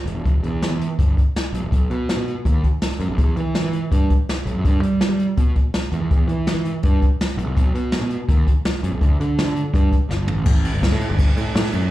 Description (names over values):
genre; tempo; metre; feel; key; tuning
math rock and midwest emo; 165 BPM; 4/4; straight; unclear; A4 = 436 Hz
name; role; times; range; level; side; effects
fuzz picked electric bass; bass; 0.1-11.9 s; E1 to G3; -21 LUFS; right 1 dB; overdrive
jazz brush drum kit; drums; 0.1-11.8 s; crash cymbal, hi-hat, kick drum, ride cymbal, snare drum, toms; -19 LUFS; equal; none
room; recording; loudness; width
little or no reverb; live gig heard through the venue's PA, club reverb; -17 LUFS; side -15 dB against mid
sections
0.0-10.5 A section; 10.5-11.9 B section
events
drum fill 10.1-10.5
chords
none